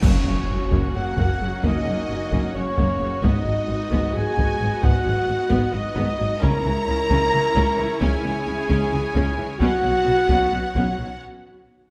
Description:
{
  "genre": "cinematic, epic orchestral film score",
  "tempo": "263 BPM (eighths)",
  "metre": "7/8",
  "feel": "straight",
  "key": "unclear",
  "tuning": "A4 = 440 Hz",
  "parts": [
    { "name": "rich symphonic violin section", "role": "second line", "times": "0.0-11.2 s", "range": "C#5 to A#5", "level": "-38 LUFS", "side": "equal", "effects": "none" },
    { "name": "warm symphonic viola section", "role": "accompaniment", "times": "0.0-11.2 s", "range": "C#3 to F#4", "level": "-32 LUFS", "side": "equal", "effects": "none" },
    { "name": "clear symphonic string section", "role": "sustained chords", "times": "0.0-11.2 s", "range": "G#3 to F#5", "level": "-36 LUFS", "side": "equal", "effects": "none" },
    { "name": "dark French horn section", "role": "sustained chords", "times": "0.0-11.2 s", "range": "C#4 to A#4", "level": "-28 LUFS", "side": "equal", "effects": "none" },
    { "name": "dark trumpet section", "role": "stabs", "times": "0.0-11.2 s", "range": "C#5 to A#5", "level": "-30 LUFS", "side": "equal", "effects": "none" },
    { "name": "rich symphonic double bass section", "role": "bass", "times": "0.0-11.1 s", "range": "F#1 to C#2", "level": "-30 LUFS", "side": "equal", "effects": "none" },
    { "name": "warm symphonic cello section", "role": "bass", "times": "0.0-11.1 s", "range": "F#2 to C#3", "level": "-30 LUFS", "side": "equal", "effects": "none" },
    { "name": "taiko ensemble", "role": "drums", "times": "0.0-11.2 s", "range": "none", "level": "-27 LUFS", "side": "equal", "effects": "none" },
    { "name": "clash cymbals and concert bass drum", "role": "percussion", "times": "0.0-0.9 s", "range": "none", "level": "-30 LUFS", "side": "equal", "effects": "none" },
    { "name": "cymbal swell and impact", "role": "sound effects", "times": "0.0-1.6 s", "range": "none", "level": "-32 LUFS", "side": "equal", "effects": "none" },
    { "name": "warm symphonic violin section", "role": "melody", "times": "0.1-11.2 s", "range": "C#5 to A#5", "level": "-38 LUFS", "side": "equal", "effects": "none" }
  ],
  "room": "moderate scoring stage reverb, RT60 1.5 s",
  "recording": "none",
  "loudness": "-21 LUFS",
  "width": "mono",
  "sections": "0.0-11.9 A section",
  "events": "band accent 0.0-0.5; impact 0.0-1.6; break 11.2-11.9",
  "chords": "0.0 F#; 3.2 G#m7; 6.4 C#m; 9.6 Bsus2",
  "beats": "| 0.02 0.25 0.48 0.71 0.95 1.18 1.41 | 1.64 1.87 2.09 2.32 2.55 2.77 3.00 | 3.23 3.46 3.68 3.92 4.15 4.37 4.60 | 4.82 5.05 5.28 5.50 5.73 5.95 6.18 | 6.41 6.64 6.87 7.10 7.32 7.55 7.78 | 8.01 8.23 8.46 8.69 8.92 9.14 9.37 | 9.60 9.83 10.06 10.29 10.52 10.75 10.98 | 11.21"
}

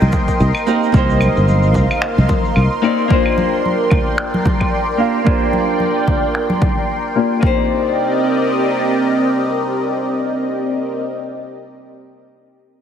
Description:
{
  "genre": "sunset chillout",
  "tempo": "111 BPM",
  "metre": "4/4",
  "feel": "swing 57% on 16ths",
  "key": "C minor",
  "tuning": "A4 = 440 Hz",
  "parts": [
    { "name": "nylon-string guitar", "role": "accompaniment", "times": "0.0-11.0 s", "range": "Bb3 to F5", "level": "-19 LUFS", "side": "moving between left 6 dB and right 5 dB", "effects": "auto-pan, low-pass filter, digital delay" },
    { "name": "lush unison pad", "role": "sustained chords", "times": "0.0-11.0 s", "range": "C4 to C6", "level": "-18 LUFS", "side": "equal", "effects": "chorus, phaser" },
    { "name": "sustaining fretless electric bass", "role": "bass", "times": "0.0-2.7 s", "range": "G1 to C2", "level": "-14 LUFS", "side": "equal", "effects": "wide subtle chorus" },
    { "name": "shaker, claves and finger snaps", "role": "drums", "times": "0.0-7.4 s", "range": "none", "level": "-26 LUFS", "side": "equal", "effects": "low-pass filter on perc, low-pass filter on snare, low-pass filter on room" },
    { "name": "congas", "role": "percussion", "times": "0.0-6.7 s", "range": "none", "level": "-23 LUFS", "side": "equal", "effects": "none" },
    { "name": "electronic kick drum", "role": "drums", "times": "0.1-7.5 s", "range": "none", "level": "-18 LUFS", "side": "equal", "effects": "overdrive" }
  ],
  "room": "moderate lush hall reverb, RT60 2.0 s, small room ambience",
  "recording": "heavily compressed radio sound, multiband compression",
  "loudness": "-14 LUFS",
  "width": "side -8 dB against mid",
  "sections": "0.0-7.4 A section; 7.4-11.7 B section",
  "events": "filter sweep on drum 0.0-7.4; filter sweep on nylon-string guitar 0.0-7.4",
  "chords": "0.0 Cm7; 3.1 Bb69; 7.4 Cm7",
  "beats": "0.40 | 0.94 1.48 2.02 2.56 | 3.10 3.64 4.18 4.72 | 5.26 5.80 6.34 6.88 | 7.42 7.96 8.51 9.05 | 9.59 10.13 10.67"
}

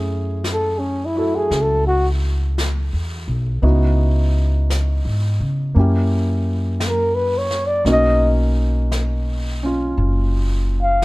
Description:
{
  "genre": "jazz ballad",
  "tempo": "57 BPM",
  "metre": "4/4",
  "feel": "swing 68% on 8ths",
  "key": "F# minor",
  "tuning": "A4 = 439 Hz",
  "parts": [
    { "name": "warm grand piano", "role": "accompaniment", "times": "0.0-11.0 s", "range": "A3 to A4", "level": "-24 LUFS", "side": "right 1 dB", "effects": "none" },
    { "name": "upright bass", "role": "bass", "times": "0.0-11.0 s", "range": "F#1 to C#3", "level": "-18 LUFS", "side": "equal", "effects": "none" },
    { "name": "jazz brush drum kit", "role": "drums", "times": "0.4-11.0 s", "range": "brushed snare drum, hi-hat, snare drum", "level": "-31 LUFS", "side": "left 1 dB", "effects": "none" },
    { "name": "breathy flugelhorn", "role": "melody", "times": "0.5-11.0 s", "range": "C#4 to E#5", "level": "-18 LUFS", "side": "equal", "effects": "none" }
  ],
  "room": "little or no reverb",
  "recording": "dark, warm production",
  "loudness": "-16 LUFS",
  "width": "side -21 dB against mid",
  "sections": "0.0-11.0 A section",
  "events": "flugelhorn solo 0.0-11.0",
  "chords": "0.0 F#m9; 3.6 C#m11; 5.8 F#7b9; 7.9 Bmaj9",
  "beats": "0.45 1.52 2.58 | 3.64 4.70 5.76 6.82 | 7.86 8.91 9.97 11.03"
}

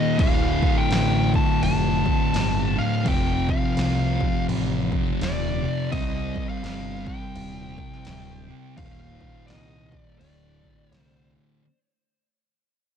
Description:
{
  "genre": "stoner and doom metal",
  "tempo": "84 BPM",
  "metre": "4/4",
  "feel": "swing 60% on 8ths",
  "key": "D phrygian",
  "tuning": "A4 = 440 Hz",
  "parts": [
    { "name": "fuzz lead guitar", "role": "melody", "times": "0.0-11.3 s", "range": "D5 to A5", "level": "-30 LUFS", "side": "left 2 dB", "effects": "distortion, tape echo" },
    { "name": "thick fuzz guitar", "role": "riff", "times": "0.0-11.6 s", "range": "D2 to C4", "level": "-27 LUFS", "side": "left 10 dB", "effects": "distortion" },
    { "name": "thick fuzz guitar", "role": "riff", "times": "0.0-11.6 s", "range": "D2 to C4", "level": "-28 LUFS", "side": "right 11 dB", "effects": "distortion" },
    { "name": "growling picked electric bass", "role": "bass", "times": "0.2-11.4 s", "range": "D1 to C2", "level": "-28 LUFS", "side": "equal", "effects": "overdrive" },
    { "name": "punchy analog drum machine", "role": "drums", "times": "0.2-11.1 s", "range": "crash cymbal, kick drum, snare drum", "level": "-26 LUFS", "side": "equal", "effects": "none" }
  ],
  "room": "little or no reverb",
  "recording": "dark, warm production",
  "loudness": "-20 LUFS",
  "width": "side -8 dB against mid",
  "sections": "0.0-11.6 A section",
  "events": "fade-out 0.0-11.6",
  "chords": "0.2 Dm; 3.1 F; 5.9 Cm; 8.8 Eb5; 10.2 D5",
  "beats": "| 0.19 0.91 1.62 2.34 | 3.06 3.77 4.49 5.20 | 5.92 6.63 7.35 8.06 | 8.78 9.49 10.20 10.92"
}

